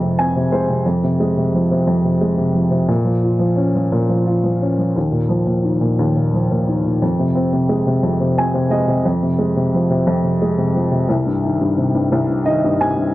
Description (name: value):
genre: pop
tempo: 59 BPM (dotted quarters)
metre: 6/8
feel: straight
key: F minor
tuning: A4 = 438 Hz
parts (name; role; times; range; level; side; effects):
- dark upright piano; solo; 0.0-13.1 s; C2 to Ab5; -15 LUFS; equal; none
room: light reverb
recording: dry, close 1970s-style studio recording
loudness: -15 LUFS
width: side -16 dB against mid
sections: 0.0-13.1 A section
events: upright piano fill 0.0-0.8, 8.0-9.1, 12.1-13.1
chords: 0.0 Fm; 2.9 Bbm; 5.0 Ebsus2; 7.0 Fm; 11.1 Cm